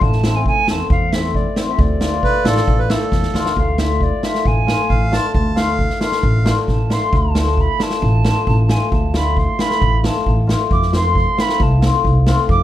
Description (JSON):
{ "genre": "klezmer", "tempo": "134 BPM", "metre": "4/4", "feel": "straight", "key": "D dorian sharp4", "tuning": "A4 = 440 Hz", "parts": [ { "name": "silver concert flute", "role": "melody", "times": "0.0-12.6 s", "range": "D5 to D6", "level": "-22 LUFS", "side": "right 5 dB", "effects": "none" }, { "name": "cimbalom", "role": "accompaniment", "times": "0.0-12.4 s", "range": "A3 to F4", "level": "-21 LUFS", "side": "left 6 dB", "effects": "none" }, { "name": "upright bass", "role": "bass", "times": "0.0-12.6 s", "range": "A1 to F2", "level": "-18 LUFS", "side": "equal", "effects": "none" }, { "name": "street-band drum kit", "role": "drums", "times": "0.0-12.6 s", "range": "kick drum, snare drum", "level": "-19 LUFS", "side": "equal", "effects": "none" }, { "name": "accordion", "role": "second line", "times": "2.2-6.5 s", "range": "A4 to A5", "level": "-22 LUFS", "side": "right 4 dB", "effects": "none" } ], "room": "light reverb", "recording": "dark, warm production", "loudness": "-14 LUFS", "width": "side -13 dB against mid", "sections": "0.0-3.6 A section; 3.6-12.6 B section", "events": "drum fill 3.1-3.6; flute solo 3.6-12.6", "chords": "0.0 Am; 1.8 Dm; 10.7 F", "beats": "| 0.02 0.46 0.90 1.35 | 1.79 2.23 2.68 3.12 | 3.57 4.01 4.46 4.90 | 5.35 5.79 6.24 6.69 | 7.13 7.58 8.03 8.47 | 8.92 9.37 9.82 10.26 | 10.71 11.16 11.61 12.05 | 12.50" }